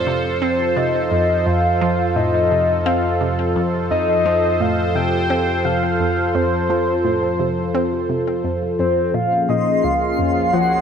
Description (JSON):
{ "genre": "ambient", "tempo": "86 BPM", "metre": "4/4", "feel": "straight", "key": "unclear", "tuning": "A4 = 441 Hz", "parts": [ { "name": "soft octave-layered synth lead", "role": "melody", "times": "0.0-10.8 s", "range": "C5 to G5", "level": "-20 LUFS", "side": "left 2 dB", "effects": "chorus, ping-pong delay" }, { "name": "sweeping resonant pad", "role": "sustained chords", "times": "0.0-10.8 s", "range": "F3 to C5", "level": "-20 LUFS", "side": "right 1 dB", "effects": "chorus" }, { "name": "hollow square pluck", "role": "riff", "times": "0.0-10.7 s", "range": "Db2 to C4", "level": "-24 LUFS", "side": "equal", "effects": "chorus, phaser, cassette tape, ping-pong delay" }, { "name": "analog drone", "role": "bass", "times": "0.0-10.8 s", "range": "Bb1 to F2", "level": "-26 LUFS", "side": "right 1 dB", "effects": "chorus" }, { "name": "twinkling granular texture", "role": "texture", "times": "9.5-10.8 s", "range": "C6", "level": "-28 LUFS", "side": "right 2 dB", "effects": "built-in reverb" } ], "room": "wet plate reverb, RT60 2.9 s", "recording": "none", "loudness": "-16 LUFS", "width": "side -7 dB against mid", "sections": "0.0-9.1 A section; 9.1-10.8 B section", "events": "none", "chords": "0.0 F; 9.1 Bbm7" }